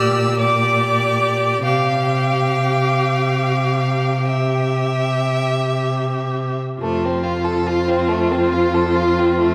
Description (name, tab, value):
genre	classical, slow romantic movement for string quartet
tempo	47 BPM (dotted quarters)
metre	12/8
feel	rubato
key	F major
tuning	A4 = 439 Hz
part	bright violin	melody	0.0-9.5 s	C5 to E6	-28 LUFS	equal	none
part	clear violin	second line	0.0-9.5 s	A3 to F5	-25 LUFS	equal	none
part	clear viola	accompaniment	0.0-9.5 s	F4 to G4	-23 LUFS	equal	none
part	warm cello	bass	0.0-9.5 s	F2 to C3	-23 LUFS	equal	none
room	wet concert hall reverb, RT60 2.6 s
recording	none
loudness	-18 LUFS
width	mono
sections	0.0-6.8 A section; 6.8-9.5 B section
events	none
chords	0.0 Gm/Bb; 1.6 Csus4; 6.8 F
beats	0.39 | 1.65 2.94 4.23 5.51 | 6.80 8.09 9.37